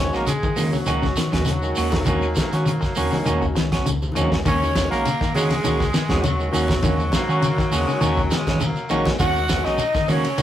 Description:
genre	afrobeat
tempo	101 BPM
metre	4/4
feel	swing 53% on 16ths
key	Eb minor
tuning	A4 = 441 Hz
part	warm horn section	melody	0.0-10.4 s	Gb4 to Gb5	-28 LUFS	left 2 dB	none
part	raspy tenor saxophone	second line	0.0-10.4 s	Gb3 to Gb4	-29 LUFS	right 2 dB	none
part	barky tine electric piano	accompaniment	0.0-10.4 s	Eb3 to Gb4	-29 LUFS	left 1 dB	overdrive
part	hollow-body short-scale fingered electric bass	bass	0.0-10.4 s	Bb1 to Eb3	-26 LUFS	equal	none
part	clean electric guitar	stabs	0.1-10.4 s	Bb3 to Gb4	-26 LUFS	right 3 dB	none
part	damped 70s drum kit	drums	0.1-10.4 s	hi-hat, kick drum, ride cymbal, snare drum	-25 LUFS	equal	none
part	shekere	percussion	0.1-10.4 s	none	-30 LUFS	right 2 dB	none
part	electric guitar at the edge of break-up	arpeggios	0.3-10.4 s	Db3 to Eb3	-26 LUFS	left 4 dB	none
part	claves	percussion	0.3-4.3 s	none	-39 LUFS	left 3 dB	none
part	congas	percussion	0.3-10.2 s	none	-29 LUFS	left 1 dB	none
part	raspy baritone saxophone	second line	1.5-9.1 s	Gb3 to Bb3	-31 LUFS	left 1 dB	none
room	moderate studio reverb, RT60 0.5 s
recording	rough rehearsal-room recording, warm saturation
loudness	-18 LUFS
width	side -11 dB against mid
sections	0.0-4.5 A section; 4.5-10.4 A section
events	drum fill 4.0-4.5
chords	0.0 Ebm7

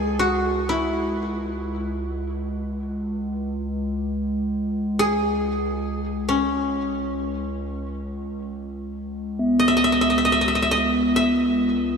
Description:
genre	world meditative, free-time meditation music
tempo	free time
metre	none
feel	none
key	C# minor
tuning	A4 = 440 Hz
part	koto	melody	0.0-12.0 s	C#4 to E5	-23 LUFS	equal	tape echo
part	warbly tape-like pad	drone	0.0-12.0 s	C#2	-27 LUFS	equal	chorus, built-in reverb
part	bronze singing bowl	texture	0.0-12.0 s	B3 to B4	-22 LUFS	equal	none
room	wet huge ambient reverb, RT60 4.7 s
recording	none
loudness	-21 LUFS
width	side -5 dB against mid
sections	0.0-8.5 A section; 8.5-12.0 A section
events	none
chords	none

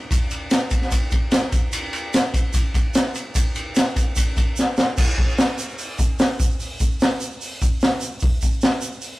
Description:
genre	rock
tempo	148 BPM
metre	4/4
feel	straight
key	none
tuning	none
part	raw garage drum kit	drums	0.1-9.1 s	crash cymbal, hi-hat, kick drum, ride cymbal, snare drum	-19 LUFS	equal	none
part	tube shaker	percussion	0.1-9.1 s	none	-33 LUFS	right 3 dB	none
room	little or no reverb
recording	rough rehearsal-room recording, warm saturation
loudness	-18 LUFS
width	side -19 dB against mid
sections	0.0-5.0 A section; 5.0-9.2 B section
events	drum fill 4.6-5.0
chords	none

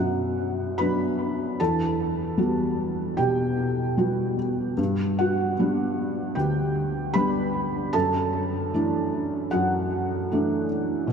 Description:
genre	neoclassical minimalist piano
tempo	76 BPM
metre	4/4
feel	rubato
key	unclear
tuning	A4 = 440 Hz
part	felt-muted upright piano	solo	0.0-11.1 s	D2 to B5	-23 LUFS	equal	analog chorus, analog delay
room	wet cathedral reverb, RT60 6.2 s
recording	dreamy mix soaked in reverb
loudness	-23 LUFS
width	side -6 dB against mid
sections	0.0-11.1 A section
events	none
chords	0.0 Bm; 1.6 Emadd9; 4.8 G; 7.9 Dadd9/F#

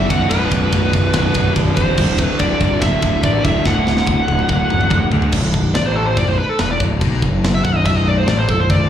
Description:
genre	heavy metal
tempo	143 BPM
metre	4/4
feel	straight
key	B phrygian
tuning	A4 = 439 Hz
part	high-gain lead guitar	melody	0.0-8.9 s	A4 to F#5	-20 LUFS	equal	distortion, slapback echo, tape echo
part	brassy analog pad	sustained chords	0.0-5.3 s	D3 to D5	-28 LUFS	equal	none
part	distorted electric guitar	riff	0.0-5.3 s	B1 to D3	-22 LUFS	right 8 dB	distortion, slapback echo
part	sludgy distorted guitar	riff	0.0-8.9 s	B1 to D3	-23 LUFS	left 7 dB	overdrive, slapback echo
part	fuzz picked electric bass	bass	0.0-8.9 s	B0 to D2	-18 LUFS	equal	overdrive
part	tight metal drum kit	drums	0.1-8.8 s	crash cymbal, kick drum, ride cymbal, snare drum, toms	-21 LUFS	equal	none
room	studio ambience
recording	live gig heard through the venue's PA, club reverb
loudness	-14 LUFS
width	side -10 dB against mid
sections	0.0-5.3 A section; 5.3-8.9 B section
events	half time 0.0-5.3; drum fill 3.7-5.3; lead electric guitar solo 5.3-8.9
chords	0.0 Bm; 2.0 D; 5.3 B5

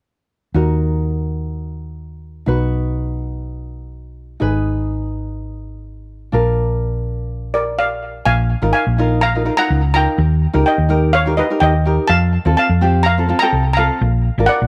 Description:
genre	calypso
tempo	125 BPM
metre	4/4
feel	straight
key	Eb harmonic minor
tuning	A4 = 440 Hz
part	tenor ukulele	accompaniment	0.5-14.6 s	C4 to B4	-23 LUFS	equal	plate reverb
part	hollow-body short-scale fingered electric bass	bass	0.5-14.7 s	Ab1 to F2	-20 LUFS	equal	none
part	steel pan	melody	7.5-14.7 s	Bb4 to Bb5	-20 LUFS	equal	plate reverb, tape echo
room	moderate small room reverb, RT60 0.5 s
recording	none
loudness	-17 LUFS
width	mono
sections	0.5-8.3 A section; 8.3-14.7 B section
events	none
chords	0.5 Ebm; 2.5 B; 4.4 Abm; 6.3 Bb; 8.3 Bb7sus4; 10.2 Eb; 12.1 F; 14.0 Bb7

